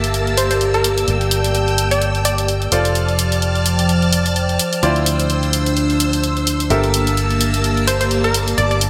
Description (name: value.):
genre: piano house.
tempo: 128 BPM.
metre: 4/4.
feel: swing 56% on 16ths.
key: G dorian.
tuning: A4 = 440 Hz.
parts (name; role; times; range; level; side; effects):
string machine, violins; sustained chords; 0.0-8.9 s; Bb3 to F6; -25 LUFS; equal; ensemble chorus.
clear upright piano; riff; 0.0-8.9 s; E4 to E5; -27 LUFS; equal; delay.
fingered electric bass; bass; 0.0-8.9 s; F1 to D2; -22 LUFS; equal; low-pass filter.
electronic hi-hat; drums; 0.0-8.9 s; none; -24 LUFS; equal; studio reverb.
warbly tape-like pad; texture; 0.0-8.9 s; F3 to E6; -24 LUFS; equal; chorus, built-in reverb.
glassy wavetable pluck; melody; 0.4-2.6, 7.9-8.8 s; Bb4 to D5; -24 LUFS; equal; chorus, delay.
room: moderate lush hall reverb, RT60 2.0 s.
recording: bright 1980s-style digital production.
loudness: -17 LUFS.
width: mono.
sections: 0.0-8.9 A section.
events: none.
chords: 0.0 Gm69; 2.7 F6; 4.8 Dm9; 6.7 Gm69.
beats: 0.14 0.61 | 1.08 1.55 2.02 2.48 | 2.95 3.42 3.89 4.36 | 4.83 5.30 5.77 6.23 | 6.70 7.17 7.64 8.11 | 8.58.